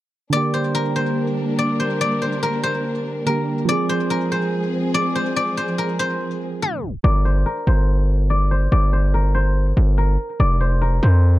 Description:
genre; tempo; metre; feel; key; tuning
hip hop; 143 BPM; 4/4; half-time; G phrygian; A4 = 440 Hz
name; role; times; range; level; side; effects
guzheng; melody; 0.3-11.4 s; Bb4 to D5; -23 LUFS; left 2 dB; low-pass filter
soft electric-piano-like synth keys; accompaniment; 0.3-7.1 s; D3 to Ab4; -23 LUFS; right 2 dB; chorus
dark symphonic string section; sustained chords; 0.3-7.0 s; F3 to Bb4; -27 LUFS; left 1 dB; none
distorted 808-style bass; bass; 7.0-11.4 s; F1 to F2; -16 LUFS; equal; distortion
room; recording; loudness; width
little or no reverb; dark, warm production, tape stop; -18 LUFS; side -16 dB against mid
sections
0.3-7.0 A section; 7.0-11.4 B section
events
tape stop 6.6-7.0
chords
0.3 Gm; 3.7 Fm; 7.0 Gmadd11; 10.4 F5

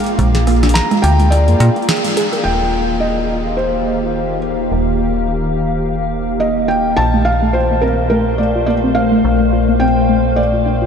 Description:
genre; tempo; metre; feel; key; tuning
IDM; 106 BPM; 4/4; swing 56% on 16ths; unclear; A4 = 440 Hz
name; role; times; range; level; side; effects
felt-muted upright piano; melody; 0.0-10.9 s; Bb4 to Bb5; -19 LUFS; equal; tape echo
glassy FM pad; sustained chords; 0.0-10.9 s; Bb2 to F5; -18 LUFS; left 2 dB; ensemble chorus, built-in reverb, vintage 12-bit sampler grit
booming analog drum machine; drums; 0.0-2.4 s; hi-hat, rim click, snare drum; -22 LUFS; equal; low-pass filter on snare, low-pass filter on hats, low-pass filter on room, ping-pong delay
warbly dusty pluck; arpeggios; 0.2-2.4, 7.1-10.9 s; Ab3 to Bb4; -20 LUFS; right 1 dB; chorus, ping-pong delay
metallic FM bass; bass; 0.2-10.9 s; Eb1 to Bb2; -18 LUFS; equal; none
room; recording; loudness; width
wet huge ambient reverb, RT60 8.5 s; dreamy mix soaked in reverb; -12 LUFS; side -7 dB against mid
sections
0.0-2.5 A section; 2.5-10.9 B section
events
band accent 1.9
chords
0.0 Bb7; 2.5 Eb; 7.0 Bbmaj9

